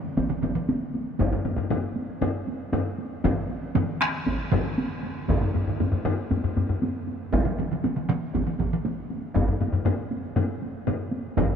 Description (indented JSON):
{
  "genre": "japanese traditional, taiko drum ensemble",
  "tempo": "118 BPM",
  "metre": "4/4",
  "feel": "straight",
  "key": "none",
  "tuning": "none",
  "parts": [
    { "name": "taiko ensemble", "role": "percussion", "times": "0.0-11.6 s", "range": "none", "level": "-30 LUFS", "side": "right 1 dB", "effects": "none" },
    { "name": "taiko ensemble", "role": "percussion", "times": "0.2-11.5 s", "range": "none", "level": "-30 LUFS", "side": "right 2 dB", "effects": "none" },
    { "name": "taiko ensemble", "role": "percussion", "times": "0.2-11.5 s", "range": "none", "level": "-30 LUFS", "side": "right 1 dB", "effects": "none" },
    { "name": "taiko ensemble", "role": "percussion", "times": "1.2-11.5 s", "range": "none", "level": "-27 LUFS", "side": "left 2 dB", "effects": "none" }
  ],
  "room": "moderate huge ambient reverb, RT60 7.1 s",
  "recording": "heard from further back in the room",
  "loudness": "-24 LUFS",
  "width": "side -7 dB against mid",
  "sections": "0.0-11.6 A section",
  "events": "none",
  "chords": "none"
}